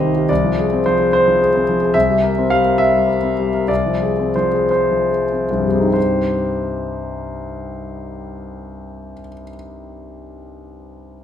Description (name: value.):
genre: classical, romantic character piece for solo piano.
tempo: 45-74 BPM (dotted quarters).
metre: 6/8.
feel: rubato.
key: C minor.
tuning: A4 = 439 Hz.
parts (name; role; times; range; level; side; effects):
warm concert grand piano; solo; 0.0-11.2 s; C2 to F5; -16 LUFS; left 1 dB; none.
room: wet recital hall reverb, RT60 1.4 s.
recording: minimal, uncompressed stereo recording.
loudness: -14 LUFS.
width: side -9 dB against mid.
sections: 0.0-6.0 A section; 6.0-10.8 B section.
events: slowing down 1.1-6.0.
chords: 0.3 Fm/C; 1.9 C7; 3.7 Fm/C; 6.0 Cm.